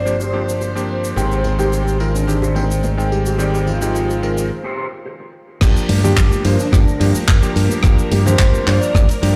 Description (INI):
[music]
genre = nu-disco, nu disco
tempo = 108 BPM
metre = 4/4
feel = straight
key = G phrygian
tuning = A4 = 442 Hz
[part]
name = soft octave-layered synth lead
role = melody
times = 0.0-9.1 s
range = D4 to D5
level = -26 LUFS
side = equal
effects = chorus, tape echo
[part]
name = clear electric grand piano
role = accompaniment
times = 0.0-9.4 s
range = Eb3 to G5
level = -24 LUFS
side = equal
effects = sidechain pumping
[part]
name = string machine, full ensemble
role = sustained chords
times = 0.0-9.4 s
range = Bb4 to C5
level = -31 LUFS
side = equal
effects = ensemble chorus, sidechain pumping
[part]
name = fingered electric bass with an envelope filter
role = bass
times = 0.0-9.3 s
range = G1 to G2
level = -21 LUFS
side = equal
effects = tube saturation
[part]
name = electric guitar at the edge of break-up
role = riff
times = 0.1-5.2 s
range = F4 to Eb5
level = -30 LUFS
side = equal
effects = ensemble chorus, low-pass filter, tape echo
[part]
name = tight funk drum kit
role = drums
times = 0.1-9.3 s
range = crash cymbal, handclaps, hi-hat, rim click, shaker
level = -27 LUFS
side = equal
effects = none
[part]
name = tambourine and congas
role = percussion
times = 1.2-9.3 s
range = none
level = -30 LUFS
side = equal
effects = none
[part]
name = electronic kick drum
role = drums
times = 5.6-9.1 s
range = none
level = -16 LUFS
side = equal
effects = overdrive
[sound]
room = light reverb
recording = played on a big sound system in a bare room, stone room reverb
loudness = -16 LUFS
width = mono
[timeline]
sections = 0.0-5.6 A section; 5.6-9.4 B section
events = break 4.5-5.6; drop 5.6-9.4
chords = 0.0 Gm7; 1.2 Abmaj7; 5.6 Gm7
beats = 0.06 0.61 | 1.17 1.72 2.28 2.83 | 3.39 3.95 4.50 5.06 | 5.61 6.17 6.72 7.28 | 7.83 8.39 8.95